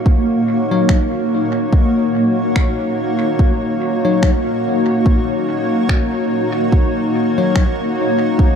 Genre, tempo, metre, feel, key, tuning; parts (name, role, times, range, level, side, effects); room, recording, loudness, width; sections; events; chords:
ambient dub; 72 BPM; 4/4; swing 57% on 16ths; Eb minor; A4 = 437 Hz
granular cloud pad; sustained chords; 0.0-8.6 s; Bb3 to Db5; -16 LUFS; equal; built-in reverb
electronic kick drum; drums; 0.1-8.6 s; -14 LUFS; equal; overdrive
bell-like tine electric piano; stabs; 0.7-7.6 s; Gb3 to Db5; -22 LUFS; left 6 dB; auto-pan, dub echo
electronic finger snaps; drums; 0.9-7.7 s; -29 LUFS; equal; dub echo
light reverb; dark, warm production; -14 LUFS; side -7 dB against mid
0.0-8.6 A section
0.0 Ebm7